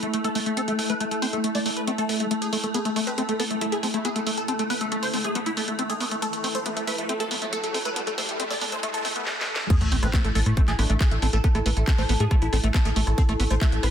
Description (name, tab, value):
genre	psychedelic trance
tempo	138 BPM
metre	4/4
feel	straight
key	A minor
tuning	A4 = 437 Hz
part	supersaw stab	melody	0.0-13.9 s	A3 to D5	-29 LUFS	equal	phaser, sidechain pumping, digital delay
part	swarming drone	sustained chords	0.0-9.7 s	A3	-32 LUFS	left 2 dB	built-in reverb, sidechain pumping
part	liquid acid bass	riff	0.0-13.9 s	G#3 to C4	-31 LUFS	equal	chorus, auto-pan, sidechain pumping, digital delay
part	garage drum kit	drums	0.0-13.9 s	crash cymbal, handclaps, hi-hat, rim click, snare drum	-30 LUFS	equal	high-pass filter on hats, high-pass filter on snare, high-pass filter on cymbals, high-pass filter on room
part	warbly tape-like pad	texture	0.0-13.9 s	E4 to A5	-34 LUFS	equal	chorus, built-in reverb, sidechain pumping
part	riser and sub drop	sound effects	4.2-11.4 s	none	-33 LUFS	equal	none
part	resonant blip pluck	second line	3.1-4.1, 10.0-11.0 s	C4 to E4	-38 LUFS	left 3 dB	chorus, vintage 12-bit sampler grit, sidechain pumping, high-pass filter, digital delay
part	electronic kick drum	drums	9.7-13.7 s	none	-21 LUFS	equal	none
part	tight sequencer bass	bass	9.8-13.9 s	A1 to A2	-23 LUFS	equal	none
room	light reverb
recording	dense, heavily limited modern master, high-pass filter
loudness	-22 LUFS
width	side -9 dB against mid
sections	0.0-9.7 A section; 9.7-13.9 B section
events	build-up 0.0-9.7; filter sweep on acid bass 0.0-9.7; filter sweep 0.0-9.7; riser 4.2-9.3; drum fill 9.3-9.7; drop 9.7-13.9; impact 9.7-11.4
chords	0.0 A5